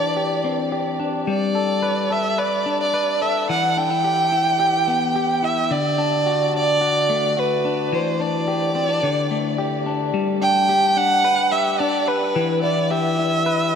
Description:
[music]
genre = indie pop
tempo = 108 BPM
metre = 4/4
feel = straight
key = G major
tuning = A4 = 439 Hz
[part]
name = warm violin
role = melody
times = 0.0-13.8 s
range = B4 to G5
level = -19 LUFS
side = right 2 dB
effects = ping-pong delay
[part]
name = clean electric guitar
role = arpeggios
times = 0.0-13.8 s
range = D3 to B4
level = -22 LUFS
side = left 4 dB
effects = ping-pong delay
[sound]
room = wet huge ambient reverb, RT60 7.5 s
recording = dreamy mix soaked in reverb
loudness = -18 LUFS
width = side -7 dB against mid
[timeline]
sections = 0.0-10.1 A section; 10.1-13.8 B section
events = none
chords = 0.0 Cadd9/E; 1.3 Gadd9; 3.5 Em; 5.7 D; 7.9 Cadd9/E; 9.0 Dsus4; 10.1 G; 12.4 Em

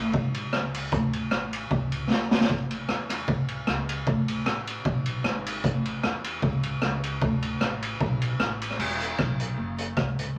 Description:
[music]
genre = ska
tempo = 152 BPM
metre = 4/4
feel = swing 54% on 8ths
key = E mixolydian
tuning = A4 = 438 Hz
[part]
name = upright bass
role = bass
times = 0.0-10.4 s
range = E1 to E2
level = -34 LUFS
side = equal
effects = none
[part]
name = raw garage drum kit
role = drums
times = 0.1-10.3 s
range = crash cymbal, hi-hat, kick drum, ride cymbal, rim click, snare drum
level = -28 LUFS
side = equal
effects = none
[sound]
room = moderate club reverb, RT60 0.5 s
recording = vinyl crackle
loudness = -27 LUFS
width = mono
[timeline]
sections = 0.0-8.8 A section; 8.8-10.4 B section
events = drum fill 2.1-2.5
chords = none

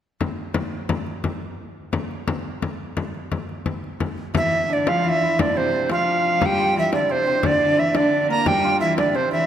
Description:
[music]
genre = medieval dance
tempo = 116 BPM (dotted quarters)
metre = 6/8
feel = straight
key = D minor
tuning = A4 = 440 Hz
[part]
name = frame drum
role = percussion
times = 0.2-9.4 s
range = none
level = -26 LUFS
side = left 3 dB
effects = none
[part]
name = hammered dulcimer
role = second line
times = 4.3-9.5 s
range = C4 to Bb4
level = -25 LUFS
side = right 4 dB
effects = none
[part]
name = bright tenor recorder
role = melody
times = 4.4-9.5 s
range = C5 to Bb5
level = -19 LUFS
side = right 2 dB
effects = none
[part]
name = rich viola da gamba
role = second line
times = 4.4-9.5 s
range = C3 to Bb3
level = -25 LUFS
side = left 3 dB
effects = none
[sound]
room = wet concert hall reverb, RT60 2.4 s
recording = none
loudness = -19 LUFS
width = side -10 dB against mid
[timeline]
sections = 0.2-4.3 A section; 4.3-9.5 B section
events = none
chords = none

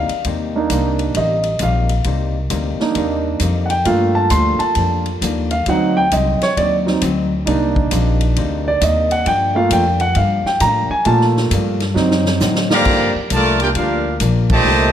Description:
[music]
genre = jazz, big band swing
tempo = 133 BPM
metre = 4/4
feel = swing 65% on 8ths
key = G minor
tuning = A4 = 440 Hz
[part]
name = vintage hollow-body jazz guitar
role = accompaniment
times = 0.0-14.9 s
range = G2 to G4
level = -24 LUFS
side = left 5 dB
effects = none
[part]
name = warm concert grand piano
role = accompaniment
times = 0.0-12.7 s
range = F#3 to C6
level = -17 LUFS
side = right 2 dB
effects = none
[part]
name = upright bass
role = bass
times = 0.0-14.9 s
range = A1 to Bb2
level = -19 LUFS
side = left 1 dB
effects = none
[part]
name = swinging big-band drum kit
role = drums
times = 0.1-14.6 s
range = crash cymbal, hi-hat, kick drum, ride cymbal, snare drum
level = -24 LUFS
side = equal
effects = none
[part]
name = bright trumpet section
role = melody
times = 12.7-14.9 s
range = D4 to Bb5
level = -17 LUFS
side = right 1 dB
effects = none
[part]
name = clear trombone section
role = second line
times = 12.7-14.9 s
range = Bb2 to G4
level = -20 LUFS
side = equal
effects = none
[sound]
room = moderate recital hall reverb, RT60 1.7 s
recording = none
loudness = -14 LUFS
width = side -10 dB against mid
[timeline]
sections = 0.0-12.9 A section; 12.9-14.9 B section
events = grand piano solo 0.0-12.9; drum fill 12.0-12.9; band accent 14.4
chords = 0.0 Cm7; 3.9 Gm7; 5.7 D7b9; 7.5 Cm7; 9.3 Gm7; 12.0 D7b9; 12.9 Gm7

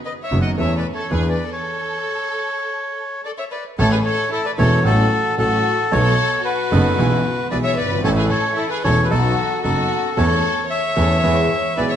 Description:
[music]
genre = tango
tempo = 112 BPM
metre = 4/4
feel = rubato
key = A major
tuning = A4 = 439 Hz
[part]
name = bandoneon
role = melody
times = 0.1-12.0 s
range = A4 to F#5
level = -21 LUFS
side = left 1 dB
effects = none
[part]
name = warm studio violin section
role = second line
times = 0.1-12.0 s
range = E4 to D#5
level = -25 LUFS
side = left 2 dB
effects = none
[part]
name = warm concert grand piano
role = accompaniment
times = 0.3-12.0 s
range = E1 to A4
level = -21 LUFS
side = equal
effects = none
[part]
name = clear double bass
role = bass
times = 0.3-12.0 s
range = E1 to E2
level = -21 LUFS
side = right 1 dB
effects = none
[part]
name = bandoneon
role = stabs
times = 3.8-12.0 s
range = A3 to A4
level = -29 LUFS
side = right 5 dB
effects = none
[sound]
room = moderate recital hall reverb, RT60 1.7 s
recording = nothing above 10.5 kHz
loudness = -16 LUFS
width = side -9 dB against mid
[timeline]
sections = 0.0-3.8 A section; 3.8-12.0 A section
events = stop 1.6-3.8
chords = 0.0 B; 0.6 A/E; 1.1 E7; 1.6 N.C.; 3.8 A; 4.9 F#m/A; 5.9 B7; 7.0 E/B; 8.0 A; 9.1 B7; 10.2 A/E; 11.2 E

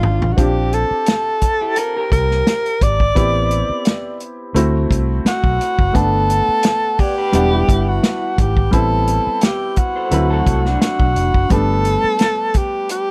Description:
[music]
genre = lush 1970s-style soul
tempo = 86 BPM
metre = 4/4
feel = swing 54% on 16ths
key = G major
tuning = A4 = 440 Hz
[part]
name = breathy tenor saxophone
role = melody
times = 0.0-13.1 s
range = F4 to D5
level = -21 LUFS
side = equal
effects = none
[part]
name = clear concert grand piano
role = accompaniment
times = 0.0-13.1 s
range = Eb3 to F#5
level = -25 LUFS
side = equal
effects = none
[part]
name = electric guitar at the edge of break-up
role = riff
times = 0.0-11.5 s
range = D4 to D5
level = -28 LUFS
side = equal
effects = tremolo
[part]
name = vintage muted fingered electric bass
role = bass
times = 0.0-12.1 s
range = E1 to D2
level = -21 LUFS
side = equal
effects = none
[part]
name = warm soul drum kit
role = drums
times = 0.0-13.1 s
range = hi-hat, kick drum, snare drum, toms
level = -19 LUFS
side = equal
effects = none
[sound]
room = light reverb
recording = none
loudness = -17 LUFS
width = mono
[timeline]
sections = 0.0-11.5 A section; 11.5-13.1 A section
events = drum fill 0.0-0.4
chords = 0.4 Bb6; 3.2 Am7; 4.6 D7; 5.9 Gmaj7; 7.3 Em7; 8.7 Am7; 10.1 D7; 11.5 Gadd9

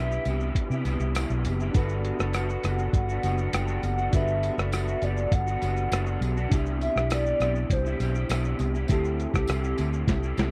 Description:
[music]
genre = indie pop, bedroom pop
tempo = 101 BPM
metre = 4/4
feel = straight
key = G major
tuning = A4 = 440 Hz
[part]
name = hollow clarinet-like synth lead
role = melody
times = 0.0-10.5 s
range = G4 to G5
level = -34 LUFS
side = equal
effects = phaser, lush chorus, tape echo
[part]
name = electric guitar through a small old amp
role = accompaniment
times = 0.0-10.5 s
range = C3 to G4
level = -35 LUFS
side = equal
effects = ensemble chorus, warbly pitch drift
[part]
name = soft electric-piano-like synth keys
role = accompaniment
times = 0.0-10.5 s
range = C4 to B4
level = -39 LUFS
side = equal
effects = chorus
[part]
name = vintage muted fingered electric bass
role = bass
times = 0.0-10.5 s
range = F#1 to C3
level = -30 LUFS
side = equal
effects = none
[part]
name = lo-fi sampler-style drum kit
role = drums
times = 0.1-10.5 s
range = hi-hat, kick drum, rim click, shaker, snare drum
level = -29 LUFS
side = equal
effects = none
[part]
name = tambourine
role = percussion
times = 0.3-10.5 s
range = none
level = -49 LUFS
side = equal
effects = none
[sound]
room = little or no reverb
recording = dry, close 1970s-style studio recording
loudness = -26 LUFS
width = mono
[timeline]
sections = 0.0-10.5 A section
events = drum fill 10.1-10.5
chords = 0.0 Cmaj7; 1.8 Gmaj7; 6.5 Cmaj7; 8.9 D9sus4

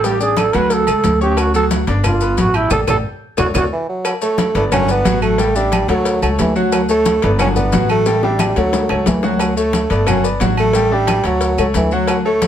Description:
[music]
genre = latin, salsa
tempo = 179 BPM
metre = 4/4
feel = straight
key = D major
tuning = A4 = 439 Hz
[part]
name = growling trombone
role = melody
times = 0.0-3.6 s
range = E4 to B4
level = -17 LUFS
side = right 4 dB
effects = none
[part]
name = bright grand piano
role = accompaniment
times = 0.0-12.5 s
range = F#3 to G6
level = -20 LUFS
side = left 3 dB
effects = none
[part]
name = upright bass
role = bass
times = 0.0-12.5 s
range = G1 to D2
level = -19 LUFS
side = equal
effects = none
[part]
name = congas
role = percussion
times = 0.0-12.5 s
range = none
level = -23 LUFS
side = left 2 dB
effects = none
[part]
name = cowbell and bongos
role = percussion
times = 0.0-12.5 s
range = none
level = -25 LUFS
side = left 5 dB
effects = none
[part]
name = maracas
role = percussion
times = 0.0-12.5 s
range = none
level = -31 LUFS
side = left 7 dB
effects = none
[part]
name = agogo bells and timbales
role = percussion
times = 0.4-12.5 s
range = none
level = -26 LUFS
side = right 2 dB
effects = none
[part]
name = claves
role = percussion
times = 0.4-12.3 s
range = none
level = -29 LUFS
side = right 4 dB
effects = none
[part]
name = warm bassoon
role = melody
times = 3.7-12.5 s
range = E3 to C#4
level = -17 LUFS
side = right 2 dB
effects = none
[sound]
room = moderate studio reverb, RT60 0.7 s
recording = none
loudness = -13 LUFS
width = side -10 dB against mid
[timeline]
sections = 0.0-4.1 A section; 4.1-12.5 B section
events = trombone solo 0.0-4.1; band accent 2.7-4.1; drum fill 3.1-4.1, 8.1-9.4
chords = 0.0 A7sus4; 0.7 Dmaj7; 2.0 G; 2.7 A7sus4; 3.4 Dmaj7; 4.1 D5; 4.7 Gmaj7; 5.4 A7sus4; 6.1 Dmaj7; 7.4 Gmaj7; 8.1 A7sus4; 8.7 Dmaj7; 10.1 Gmaj7; 10.7 A7sus4; 11.4 Dmaj7

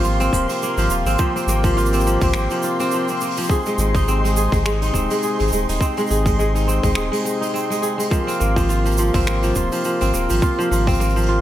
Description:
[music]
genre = folktronica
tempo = 104 BPM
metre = 4/4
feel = swing 56% on 16ths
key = unclear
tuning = A4 = 440 Hz
[part]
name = hand-pumped harmonium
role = sustained chords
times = 0.0-11.4 s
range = C3 to G4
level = -24 LUFS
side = equal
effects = none
[part]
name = kora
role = arpeggios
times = 0.0-11.4 s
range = F3 to Ab4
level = -22 LUFS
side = equal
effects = vintage 12-bit sampler grit, tape echo
[part]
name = warm sub bass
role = bass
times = 0.0-11.4 s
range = Eb1 to Ab1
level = -20 LUFS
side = equal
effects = none
[part]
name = soft brush drum kit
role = drums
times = 0.0-11.3 s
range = finger snaps, hi-hat, shaker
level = -29 LUFS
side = right 4 dB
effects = none
[part]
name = flickering grainy texture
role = texture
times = 0.0-11.4 s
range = C6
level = -31 LUFS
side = equal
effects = built-in reverb
[part]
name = electronic kick drum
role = drums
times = 0.3-11.0 s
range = none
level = -21 LUFS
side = equal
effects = none
[sound]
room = light reverb, studio reverb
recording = none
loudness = -17 LUFS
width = side -12 dB against mid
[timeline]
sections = 0.0-11.4 A section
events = none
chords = 0.0 Bbsus2; 3.5 Ab

